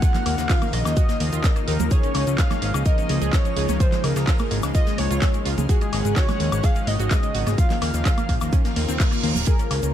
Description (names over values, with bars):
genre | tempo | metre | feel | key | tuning
progressive house | 127 BPM | 4/4 | straight | Db major | A4 = 439 Hz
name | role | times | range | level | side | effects
warm velvety synth lead | melody | 0.0-9.9 s | Ab4 to Gb5 | -29 LUFS | right 1 dB | chorus, digital delay
soft synth bell | second line | 0.0-9.9 s | Ab4 to Gb5 | -37 LUFS | left 2 dB | none
lush unison pad | sustained chords | 0.0-9.9 s | Db3 to Gb5 | -31 LUFS | right 1 dB | chorus, sidechain pumping
analog pluck | arpeggios | 0.0-9.9 s | Ab3 to Bb4 | -29 LUFS | left 5 dB | chorus, sidechain pumping, digital delay
electronic kick drum | drums | 0.0-9.6 s | none | -20 LUFS | equal | small room ambience
pop drum kit | drums | 0.0-9.9 s | handclaps, hi-hat, woodblock | -30 LUFS | equal | sidechain pumping on hats, small room ambience, sidechain pumping on cymbals, sidechain pumping on perc
vintage brush drum kit | drums | 0.0-9.8 s | hi-hat, snare drum | -39 LUFS | right 2 dB | none
tube shaker | percussion | 0.0-9.9 s | none | -40 LUFS | left 9 dB | none
backwards swelling texture | texture | 0.0-9.9 s | F3 to F6 | -37 LUFS | left 3 dB | none
congas and woodblock | percussion | 0.1-9.7 s | none | -31 LUFS | right 6 dB | sidechain pumping on perc
fat analog bass | bass | 0.3-9.9 s | Eb1 to Eb2 | -24 LUFS | equal | sidechain pumping
reverse cymbal | sound effects | 8.7-9.5 s | none | -30 LUFS | right 6 dB | none
room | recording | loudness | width
little or no reverb | dark, warm production | -19 LUFS | side -10 dB against mid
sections
0.0-9.9 A section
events
reverse cymbal 8.7-9.5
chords
0.0 Ebmadd9; 1.9 Db6; 5.7 Ab7sus4; 7.6 Ebsus2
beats
| 0.02 0.50 0.97 1.44 | 1.91 2.38 2.86 3.33 | 3.80 4.28 4.75 5.22 | 5.69 6.17 6.64 7.11 | 7.58 8.05 8.53 9.00 | 9.47